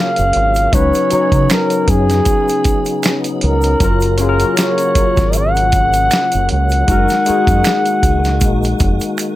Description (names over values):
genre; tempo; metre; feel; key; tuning
R&B, neo-soul; 78 BPM; 4/4; swing 56% on 16ths; F# major; A4 = 437 Hz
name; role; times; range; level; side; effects
breathy flugelhorn; melody; 0.0-9.2 s; G#4 to F#5; -16 LUFS; equal; none
barky tine electric piano; accompaniment; 0.0-9.4 s; F#3 to C#5; -18 LUFS; left 4 dB; analog chorus
tonewheel organ; sustained chords; 0.0-9.4 s; C#3 to F#4; -25 LUFS; right 2 dB; overdrive, chorus vibrato, slow rotary speaker
deep dub fingered electric bass; bass; 0.2-9.0 s; E#1 to C#3; -16 LUFS; equal; none
dusty soul sampler-style drum kit; drums; 0.2-9.4 s; hi-hat, kick drum, snare drum; -17 LUFS; equal; none
egg shaker and finger snaps; percussion; 0.2-9.4 s; none; -28 LUFS; right 5 dB; none
room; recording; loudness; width
light reverb; none; -11 LUFS; side -15 dB against mid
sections
0.0-9.4 A section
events
drum fill 9.2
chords
0.0 F#maj7; 0.7 C#9sus4; 3.8 F#maj7; 6.9 F#69